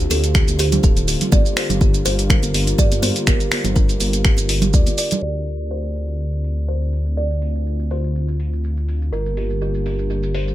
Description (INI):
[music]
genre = afro house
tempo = 123 BPM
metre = 4/4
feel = swing 53% on 16ths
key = unclear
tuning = A4 = 442 Hz
[part]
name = kalimba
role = melody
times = 0.0-8.8 s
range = G4 to D5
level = -28 LUFS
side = right 3 dB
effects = digital delay
[part]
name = warm analog pad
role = sustained chords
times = 0.0-10.5 s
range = D3 to F4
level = -28 LUFS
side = left 2 dB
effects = wide subtle chorus, sidechain pumping
[part]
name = dark detuned saw bass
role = bass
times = 0.0-10.5 s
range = D1 to G2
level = -21 LUFS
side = equal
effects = sidechain pumping
[part]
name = kalimba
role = arpeggios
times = 0.1-5.1, 9.1-10.5 s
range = F4 to D5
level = -28 LUFS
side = right 2 dB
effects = sidechain pumping, digital delay
[part]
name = deep house drum kit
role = drums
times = 0.1-10.5 s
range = finger snaps, hi-hat, shaker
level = -23 LUFS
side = equal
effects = none
[part]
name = congas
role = percussion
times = 0.1-5.2 s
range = none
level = -25 LUFS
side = right 3 dB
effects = none
[part]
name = electronic kick drum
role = drums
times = 0.3-4.8 s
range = none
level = -16 LUFS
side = equal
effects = none
[sound]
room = little or no reverb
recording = low-pass filter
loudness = -16 LUFS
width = side -14 dB against mid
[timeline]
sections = 0.0-5.2 A section; 5.2-10.5 B section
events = filter sweep 5.2-10.5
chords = 0.0 Dm7; 1.3 Gm7; 5.2 Dm7; 9.1 Gm7